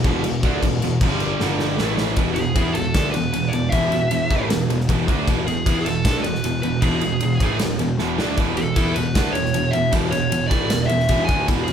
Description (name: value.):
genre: hard rock.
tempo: 155 BPM.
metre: 4/4.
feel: straight.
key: unclear.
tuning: A4 = 440 Hz.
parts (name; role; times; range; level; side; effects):
fuzz picked electric bass; bass; 0.0-11.7 s; E1 to E2; -26 LUFS; equal; overdrive.
gated 80s drum kit; drums; 0.0-11.7 s; crash cymbal, kick drum, ride cymbal, snare drum; -23 LUFS; equal; none.
sludgy distorted guitar; riff; 0.1-11.7 s; E2 to E4; -26 LUFS; left 8 dB; overdrive.
tight distorted guitar; riff; 0.1-11.7 s; E2 to E4; -24 LUFS; right 7 dB; distortion.
dark smooth lead guitar; melody; 2.3-11.7 s; G#4 to G#5; -24 LUFS; equal; overdrive.
room: moderate large studio reverb, RT60 1.0 s.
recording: band playing live in one room.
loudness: -18 LUFS.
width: side -8 dB against mid.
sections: 0.0-2.2 A section; 2.2-11.7 B section.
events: drum fill 1.4-2.2, 8.0-8.4.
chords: 0.0 E5; 1.0 G5; 1.8 A5; 2.2 E5.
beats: 0.23 | 0.62 1.01 1.40 1.78 | 2.17 2.56 2.95 3.33 | 3.72 4.11 4.50 4.89 | 5.27 5.66 6.05 6.44 | 6.83 7.22 7.60 7.99 | 8.38 8.77 9.16 9.54 | 9.93 10.32 10.71 11.10 | 11.49.